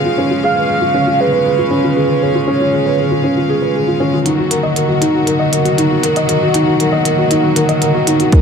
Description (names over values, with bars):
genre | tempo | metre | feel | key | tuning
piano and strings electronica | 118 BPM | 4/4 | straight | unclear | A4 = 440 Hz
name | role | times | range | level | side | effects
bright chamber string section | sustained chords | 0.0-8.4 s | Db3 to F5 | -18 LUFS | equal | sidechain pumping
felt-muted upright piano | riff | 0.0-8.4 s | Db4 to Eb5 | -14 LUFS | equal | tape echo
warm velvety synth lead | melody | 0.4-3.8 s | Cb5 to F5 | -16 LUFS | right 2 dB | chorus, tape echo
warm sub bass | bass | 4.3-8.4 s | Eb2 | -41 LUFS | left 1 dB | none
electronic hi-hat | drums | 4.3-8.4 s | none | -20 LUFS | right 1 dB | overdrive, high-pass filter on hats, high-pass filter on room
electronic kick drum | drums | 8.3-8.4 s | none | -6 LUFS | equal | overdrive
room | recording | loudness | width
moderate recital hall reverb, RT60 1.3 s | dark, warm production | -12 LUFS | side -6 dB against mid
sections
0.0-4.3 A section; 4.3-8.4 B section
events
build-up 4.3-8.4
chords
0.0 Db7; 4.3 Ebm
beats
| 0.19 0.70 1.21 1.72 | 2.22 2.73 3.24 3.75 | 4.26 4.76 5.27 5.78 | 6.29 6.80 7.31 7.82 | 8.32